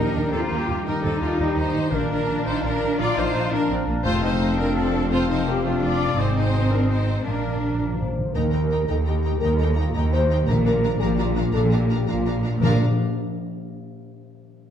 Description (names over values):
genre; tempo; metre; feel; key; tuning
cinematic, heroic adventure film score; 112 BPM (dotted quarters); 6/8; straight; Bb major; A4 = 440 Hz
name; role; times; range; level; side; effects
clear symphonic violin section; melody; 0.0-12.8 s; G3 to Bb5; -33 LUFS; left 2 dB; none
clear clarinet; second line; 0.0-8.1 s; C4 to G4; -32 LUFS; left 2 dB; none
mellow hollow concert flute; second line; 0.0-8.1 s; Ab5 to Bb5; -35 LUFS; left 1 dB; none
rich studio violin section; second line; 0.0-12.8 s; G3 to G5; -34 LUFS; left 3 dB; none
warm oboe; second line; 0.0-8.1 s; Eb5 to G5; -36 LUFS; right 1 dB; none
rich symphonic viola section; accompaniment; 0.0-12.8 s; D4 to D5; -29 LUFS; left 1 dB; none
mellow French horn section; sustained chords; 0.0-12.8 s; Eb3 to D5; -29 LUFS; left 2 dB; none
concert harp; arpeggios; 0.0-13.7 s; F2 to Bb5; -29 LUFS; left 5 dB; none
rich symphonic cello section; bass; 0.0-12.8 s; Eb2 to F4; -26 LUFS; right 2 dB; none
rich symphonic double bass section; bass; 0.0-12.8 s; F1 to Eb2; -25 LUFS; right 2 dB; none
timpani; percussion; 1.9-4.5, 7.3-8.3, 10.5-12.8 s; F2 to Bb2; -30 LUFS; equal; none
room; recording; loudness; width
wet scoring stage reverb, RT60 1.4 s; dark, warm production; -20 LUFS; side -9 dB against mid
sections
0.0-8.4 A section; 8.4-12.6 B section; 12.6-13.7 C section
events
timpani fill 7.3-8.4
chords
0.0 Eb; 1.9 Bb; 4.1 F; 6.2 Ab; 7.3 Bb; 8.4 Eb; 10.5 Bb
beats
0.33 | 0.86 1.39 | 1.92 2.46 | 2.99 3.52 | 4.05 4.58 | 5.11 5.64 | 6.17 6.71 | 7.25 7.80 | 8.36 8.90 | 9.43 9.96 | 10.49 11.02 | 11.55 12.09 | 12.63 13.17